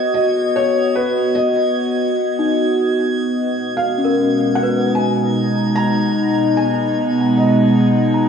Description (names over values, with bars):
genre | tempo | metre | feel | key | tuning
ambient | 75 BPM | 3/4 | straight | unclear | A4 = 440 Hz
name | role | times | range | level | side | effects
evolving wavetable pad | sustained chords | 0.0-8.3 s | B2 to A#5 | -16 LUFS | equal | chorus, built-in reverb
small celesta | arpeggios | 0.0-8.3 s | C#4 to A#5 | -22 LUFS | left 3 dB | tape echo
drifting glass-harmonics texture | texture | 0.0-8.3 s | G#6 | -30 LUFS | right 5 dB | chorus, built-in reverb
felt-muted upright piano | melody | 0.1-7.9 s | B4 to A#5 | -22 LUFS | left 1 dB | tape echo
organ-like drone | drone | 5.7-8.3 s | B3 | -21 LUFS | right 1 dB | ensemble chorus, built-in reverb, phaser
room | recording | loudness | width
wet concert hall reverb, RT60 2.2 s | worn, warbling old tape, cassette tape, warbly pitch drift | -14 LUFS | side -7 dB against mid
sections
0.0-8.3 A section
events
none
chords
0.0 B6; 3.4 G#madd9/B